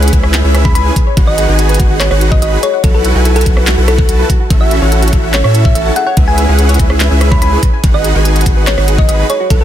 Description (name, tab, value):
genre	future bass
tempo	144 BPM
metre	4/4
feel	half-time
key	unclear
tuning	A4 = 441 Hz
part	soft round pluck	arpeggios	0.0-9.6 s	F#4 to G#5	-22 LUFS	right 1 dB	chorus, sidechain pumping, ping-pong delay
part	supersaw chords	riff	0.0-9.6 s	C#4 to B5	-16 LUFS	right 1 dB	sidechain pumping
part	saturated sub bass	bass	0.0-9.6 s	G#1 to A2	-12 LUFS	equal	sidechain pumping
part	trap drum kit	drums	0.0-9.6 s	handclaps, hi-hat, rim click	-18 LUFS	right 1 dB	none
part	electronic kick drum	drums	0.1-9.6 s	none	-11 LUFS	equal	none
part	thumb-piano-like synth pluck	melody	0.6-9.6 s	A4 to B5	-17 LUFS	equal	chorus, sidechain pumping, ping-pong delay
room	digital ambience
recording	dense, heavily limited modern master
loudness	-8 LUFS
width	side -11 dB against mid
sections	0.0-9.6 A section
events	none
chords	0.0 C#m7; 1.2 G#m7; 2.8 B7sus4; 4.5 A6; 6.0 C#m7; 7.8 G#m7